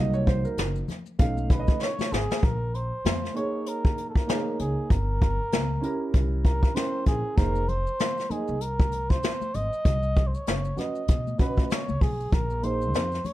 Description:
hip hop, jazz-hop; 97 BPM; 4/4; swing 58% on 16ths; Bb dorian; A4 = 440 Hz
dark concert grand piano; accompaniment; 0.0-13.0 s; Gb3 to G5; -31 LUFS; right 3 dB; plate reverb
upright bass; bass; 0.0-13.2 s; F1 to B2; -28 LUFS; equal
maracas and congas; percussion; 0.1-2.4, 7.4-13.3 s; -39 LUFS; left 5 dB
jazz brush drum kit; drums; 0.3-13.3 s; hi-hat, kick drum, snare drum; -24 LUFS; equal
trumpet with cup mute; melody; 1.5-13.3 s; Ab4 to Eb5; -31 LUFS; equal; plate reverb
light reverb; dark, warm production; -23 LUFS; side -15 dB against mid
0.0-2.4 A section; 2.4-12.3 B section; 12.3-13.3 B section
grand piano solo 0.0-2.4; drum fill 1.8-2.4
0.0 Cm7b5; 1.2 B9; 2.4 Bbm11; 4.9 Gdim; 6.1 C7b9; 7.4 Fm7; 9.9 Cdim; 11.1 Badd9; 12.3 Bb9sus4

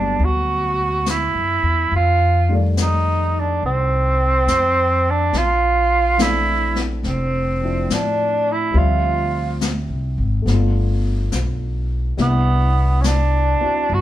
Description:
jazz ballad; 70 BPM; 4/4; swing 69% on 8ths; G major; A4 = 440 Hz
breathy tenor saxophone; melody; 0.0-14.0 s; B3 to F#4; -18 LUFS; right 2 dB
dark grand piano; accompaniment; 0.0-14.0 s; D3 to E5; -27 LUFS; left 3 dB
upright bass; bass; 0.0-14.0 s; F1 to A2; -19 LUFS; equal
jazz brush drum kit; drums; 0.2-14.0 s; brushed snare drum, hi-hat, snare drum; -25 LUFS; left 4 dB
moderate studio reverb, RT60 0.9 s; band playing live in one room; -16 LUFS; side -13 dB against mid
0.0-14.0 A section
0.0 Gmaj7; 1.9 F13; 5.3 Bbmaj9#11; 8.8 Dm11; 10.5 G9; 12.2 Cmaj9

